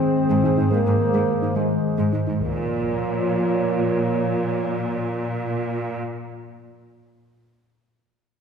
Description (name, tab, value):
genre	cinematic, hybrid orchestral and electronic film score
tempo	71 BPM (dotted quarters)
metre	6/8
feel	straight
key	Bb minor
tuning	A4 = 444 Hz
part	dark analog pad	sustained chords	0.0-6.0 s	Eb3 to Db5	-24 LUFS	right 1 dB	chorus
part	mellow French horn section	sustained chords	0.0-6.0 s	Ab3 to C4	-25 LUFS	left 1 dB	none
part	soft round pluck	arpeggios	0.3-2.4 s	Ab3 to Eb4	-29 LUFS	right 2 dB	none
part	rich studio cello section	bass	0.3-6.0 s	Ab2 to Bb2	-25 LUFS	right 1 dB	none
part	taiko ensemble	drums	2.4-3.5 s	none	-37 LUFS	right 1 dB	none
room	wet concert hall reverb, RT60 2.0 s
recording	heard from further back in the room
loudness	-20 LUFS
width	side -6 dB against mid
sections	0.0-2.4 A section; 2.4-5.8 B section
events	none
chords	0.0 Ab; 2.4 Bbm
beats	| 0.72 1.56 | 2.41 3.25 | 4.10 4.94